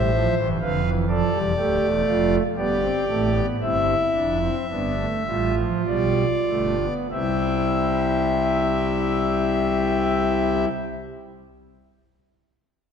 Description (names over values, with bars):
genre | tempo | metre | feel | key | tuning
classical, baroque-style 4-part fugue for pipe organ | 46-64 BPM | 4/4 | straight | C major | A4 = 440 Hz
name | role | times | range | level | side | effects
pipe organ, foundations | solo | 0.0-10.7 s | D1 to F5 | -20 LUFS | equal | none
room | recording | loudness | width
wet concert hall reverb, RT60 1.9 s | minimal, uncompressed stereo recording | -20 LUFS | side -7 dB against mid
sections
0.0-7.1 A section; 7.1-12.3 B section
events
slowing down 0.0-7.1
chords
0.0 Am; 0.6 Dm; 2.6 G7sus4; 4.7 G7; 7.1 C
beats
0.60 1.56 | 2.56 3.60 4.69 5.86 | 7.12 8.41 9.71